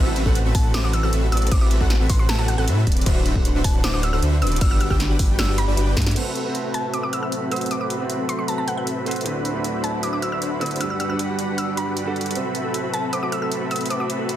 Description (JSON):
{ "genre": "future bass", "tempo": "155 BPM", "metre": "4/4", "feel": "half-time", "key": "A dorian", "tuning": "A4 = 440 Hz", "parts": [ { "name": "dense compressed supersaw", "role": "riff", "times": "0.0-14.4 s", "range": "C4 to G5", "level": "-26 LUFS", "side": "equal", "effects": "sidechain pumping, low-pass filter" }, { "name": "wide detuned saw bass", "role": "bass", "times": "0.0-6.1 s", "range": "D1 to A2", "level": "-21 LUFS", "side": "equal", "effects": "chorus, sidechain pumping" }, { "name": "thumb-piano-like synth pluck", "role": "arpeggios", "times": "0.1-5.9, 12.4-14.2 s", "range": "F#4 to D5", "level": "-34 LUFS", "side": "right 3 dB", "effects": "chorus, cassette tape, sidechain pumping, digital delay" }, { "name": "big-room dance drum kit", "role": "drums", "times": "0.2-14.4 s", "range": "crash cymbal, hi-hat, snare drum", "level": "-29 LUFS", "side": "equal", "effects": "studio reverb" }, { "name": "electronic kick drum", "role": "drums", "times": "0.3-6.0 s", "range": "none", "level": "-20 LUFS", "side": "equal", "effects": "studio reverb" }, { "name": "mallet-like synth pluck", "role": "melody", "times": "0.5-14.1 s", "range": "F#5 to E6", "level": "-28 LUFS", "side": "equal", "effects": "chorus, cassette tape, sidechain pumping, tape echo" }, { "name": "warm grand piano", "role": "accompaniment", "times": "6.2-12.4 s", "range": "D3 to B5", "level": "-29 LUFS", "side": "right 4 dB", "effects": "sidechain pumping, digital delay" }, { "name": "warm studio string section", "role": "sustained chords", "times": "6.2-14.4 s", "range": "D2 to B5", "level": "-33 LUFS", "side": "equal", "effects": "sidechain pumping, low-pass filter" } ], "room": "light reverb", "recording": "dense, heavily limited modern master", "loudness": "-19 LUFS", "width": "side -12 dB against mid", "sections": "0.0-6.2 A section; 6.2-14.4 B section", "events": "drop 0.0-6.2; drum fill 6.0", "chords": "0.0 D13; 4.6 Gmaj7; 6.2 Am69; 9.3 D13; 10.8 Gmaj7; 12.4 Am69", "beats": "0.35 0.74 1.13 | 1.52 1.90 2.29 2.68 | 3.06 3.45 3.84 4.22 | 4.61 5.00 5.39 5.77 | 6.16 6.55 6.93 7.32 | 7.71 8.10 8.48 8.87 | 9.26 9.64 10.03 10.42 | 10.81 11.19 11.58 11.97 | 12.35 12.74 13.13 13.52 | 13.90 14.29" }